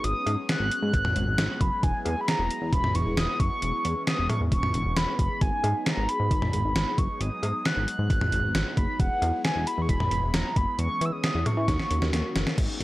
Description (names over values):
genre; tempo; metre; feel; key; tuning
synth-pop; 134 BPM; 4/4; straight; G# minor; A4 = 440 Hz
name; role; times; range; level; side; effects
mellow horn-like synth lead; melody; 0.0-12.4 s; F#5 to F#6; -29 LUFS; equal; chorus
phased analog pad; sustained chords; 0.0-12.8 s; D#3 to G#4; -35 LUFS; equal; phaser, chorus
chorused synth bass; bass; 0.0-12.8 s; E1 to E3; -28 LUFS; equal; none
gated 80s digital drum machine; drums; 0.0-12.8 s; cowbell, crash cymbal, hi-hat, kick drum, snare drum, toms; -26 LUFS; equal; gated reverb, gated reverb snare, overdrive
room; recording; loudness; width
digital ambience; dry, gritty hardware recording; -23 LUFS; side -18 dB against mid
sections
0.0-12.6 A section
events
drum fill 11.7-12.6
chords
0.0 G#m7; 1.8 Eadd9; 3.6 C#m7/E; 5.4 G#m7; 9.0 Eadd9; 10.8 C#m7/E; 11.7 D#m7